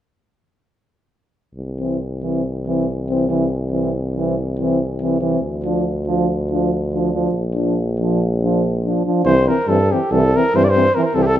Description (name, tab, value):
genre	balkan folk, Balkan brass band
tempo	281 BPM (eighths)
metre	9/8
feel	straight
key	C mixolydian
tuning	A4 = 440 Hz
part	clear tuba	bass	1.5-11.4 s	Bb1 to G2	-20 LUFS	equal	none
part	mellow euphonium	accompaniment	1.8-11.2 s	C4 to D4	-23 LUFS	left 6 dB	none
part	warm euphonium	accompaniment	1.8-11.3 s	E3 to F3	-22 LUFS	right 5 dB	none
part	dark trumpet	melody	9.2-11.4 s	G4 to D5	-17 LUFS	equal	none
room	moderate recital hall reverb, RT60 1.7 s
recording	minimal, uncompressed stereo recording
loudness	-16 LUFS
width	side -12 dB against mid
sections	1.5-9.2 A section; 9.2-11.4 B section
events	none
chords	1.5 C; 5.4 Dm; 7.3 Bb; 9.2 C